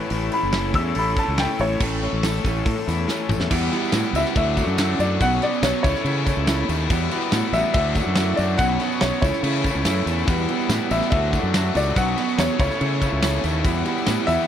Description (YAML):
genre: indie rock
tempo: 142 BPM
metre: 4/4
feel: straight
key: unclear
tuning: A4 = 441 Hz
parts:
  - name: clear upright piano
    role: melody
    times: 0.0-14.5 s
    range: C#5 to E6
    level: -25 LUFS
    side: left 2 dB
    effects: tape echo
  - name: combo organ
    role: sustained chords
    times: 0.0-14.5 s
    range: C#4 to B5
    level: -36 LUFS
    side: right 1 dB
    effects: none
  - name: electric guitar through a small old amp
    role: riff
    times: 0.0-14.5 s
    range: E2 to A4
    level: -27 LUFS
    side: right 9 dB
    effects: lush chorus
  - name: overdriven electric guitar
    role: riff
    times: 0.0-14.5 s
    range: A2 to A4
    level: -27 LUFS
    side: left 10 dB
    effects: none
  - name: fuzz fingered electric bass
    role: bass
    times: 0.1-14.4 s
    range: F#1 to C#3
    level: -24 LUFS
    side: equal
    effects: overdrive
  - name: big rock drum kit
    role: drums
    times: 0.1-14.4 s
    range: crash cymbal, hi-hat, kick drum, snare drum, toms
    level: -25 LUFS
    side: equal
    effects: none
  - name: tambourine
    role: percussion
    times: 1.8-14.5 s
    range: none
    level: -40 LUFS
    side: right 12 dB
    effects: none
room: little or no reverb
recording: dry, close 1970s-style studio recording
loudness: -19 LUFS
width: side -9 dB against mid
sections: 0.0-1.8 A section; 1.8-3.5 B section; 3.5-14.5 C section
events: upright piano solo 0.0-1.8; drum fill 3.1-3.5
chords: 0.0 A; 3.5 Emadd9; 4.4 Dadd9; 5.2 Bsus2; 5.8 A/C#; 6.9 Emadd9; 7.8 Dadd9; 8.6 Bsus2; 9.2 A/C#; 10.3 Emadd9; 11.1 Dadd9; 12.0 Bsus2; 12.6 A/C#; 13.7 Emadd9